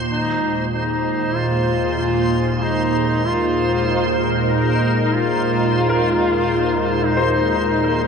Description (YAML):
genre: ambient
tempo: 48 BPM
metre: 4/4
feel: straight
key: unclear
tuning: A4 = 441 Hz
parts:
  - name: sweeping resonant pad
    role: sustained chords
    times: 0.0-8.1 s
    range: Eb3 to Bb4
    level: -23 LUFS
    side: left 1 dB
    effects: chorus
  - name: clear baby grand piano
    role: arpeggios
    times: 0.0-8.1 s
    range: Eb2 to C5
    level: -26 LUFS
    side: left 4 dB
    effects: ping-pong delay
  - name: organ-like drone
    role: drone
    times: 0.0-8.1 s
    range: Eb2 to Bb2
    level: -22 LUFS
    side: right 1 dB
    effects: ensemble chorus, built-in reverb
  - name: backwards swelling texture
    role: texture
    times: 0.0-8.1 s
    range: C5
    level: -25 LUFS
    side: right 3 dB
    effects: built-in reverb
  - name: warm duduk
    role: melody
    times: 0.1-8.1 s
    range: Eb4 to F4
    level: -21 LUFS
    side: left 2 dB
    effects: ping-pong delay
room: wet cathedral reverb, RT60 5.2 s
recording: none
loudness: -16 LUFS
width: side -6 dB against mid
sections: 0.0-8.1 A section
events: none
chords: 0.1 Ab